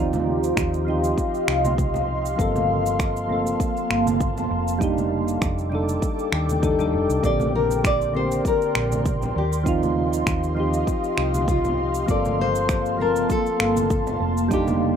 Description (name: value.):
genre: sunset chillout.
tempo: 99 BPM.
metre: 4/4.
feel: swing 55% on 16ths.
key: G minor.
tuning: A4 = 440 Hz.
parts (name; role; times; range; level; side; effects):
soft electric-piano-like synth keys; accompaniment; 0.0-15.0 s; D3 to A5; -25 LUFS; moving between left 5 dB and right 5 dB; chorus, auto-pan, tape echo.
ethereal airy pad; sustained chords; 0.0-15.0 s; Bb3 to D6; -26 LUFS; equal; ensemble chorus, built-in reverb.
hollow-body short-scale fingered electric bass; bass; 0.0-15.0 s; F1 to Eb2; -27 LUFS; equal; none.
electronic cabasa and finger snaps; drums; 0.1-14.8 s; none; -29 LUFS; right 1 dB; none.
congas; percussion; 0.1-14.8 s; none; -32 LUFS; right 1 dB; none.
electronic kick drum; drums; 0.6-14.6 s; none; -25 LUFS; equal; none.
nylon-string guitar; melody; 7.2-15.0 s; F4 to D5; -25 LUFS; left 2 dB; tape echo.
room: wet small room reverb, RT60 0.5 s.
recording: rough home demo mix.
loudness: -20 LUFS.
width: side -8 dB against mid.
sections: 0.0-15.0 A section.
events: none.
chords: 0.0 Eb69; 2.4 Gm11; 4.8 F13; 7.2 Bb69; 9.4 Eb69; 12.1 Gm11.